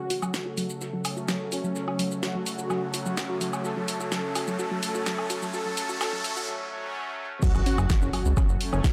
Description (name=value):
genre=melodic techno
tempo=127 BPM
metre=4/4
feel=straight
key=F# minor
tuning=A4 = 440 Hz
part: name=soft supersaw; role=melody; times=0.0-8.3 s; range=C#4 to A4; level=-36 LUFS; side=equal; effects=low-pass filter, analog delay
part: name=warm analog pad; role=sustained chords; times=0.0-8.9 s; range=C#3 to A5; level=-40 LUFS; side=equal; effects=chorus, sidechain pumping
part: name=riser and impact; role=sound effects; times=0.0-8.9 s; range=none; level=-37 LUFS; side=equal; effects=none
part: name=soft round pluck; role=arpeggios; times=0.1-8.9 s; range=F#3 to C#5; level=-36 LUFS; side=equal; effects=chorus, sidechain pumping, tape echo
part: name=deep house drum kit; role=drums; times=0.1-8.9 s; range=crash cymbal, hi-hat, shaker, snare drum, woodblock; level=-35 LUFS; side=equal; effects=high-pass filter on perc, high-pass filter on hats, high-pass filter on snare, high-pass filter on cymbals, high-pass filter on room, dub echo
part: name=brassy analog pad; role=stabs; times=1.0-8.9 s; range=F#3 to C#4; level=-38 LUFS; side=equal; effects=chorus, sidechain pumping, dub echo
part: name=electronic kick drum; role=drums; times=7.4-8.9 s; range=none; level=-25 LUFS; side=equal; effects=none
part: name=fat analog bass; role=bass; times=7.5-8.8 s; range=F#1 to C#2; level=-28 LUFS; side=equal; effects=sidechain pumping
room=moderate plate reverb, RT60 1.8 s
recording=echo-heavy mix, high-pass filter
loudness=-28 LUFS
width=mono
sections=0.0-7.4 A section; 7.4-8.9 B section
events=build-up 0.0-7.4; riser 0.0-6.5; filter sweep on synth arpeggio sound 0.0-7.4; filter sweep on supersaw synth 0.0-7.4; filter sweep on analog synth pad 0.0-7.4; filter sweep 0.0-7.4; break 6.5-7.4; drop 7.4-8.9; impact 7.4-8.9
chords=0.0 F#m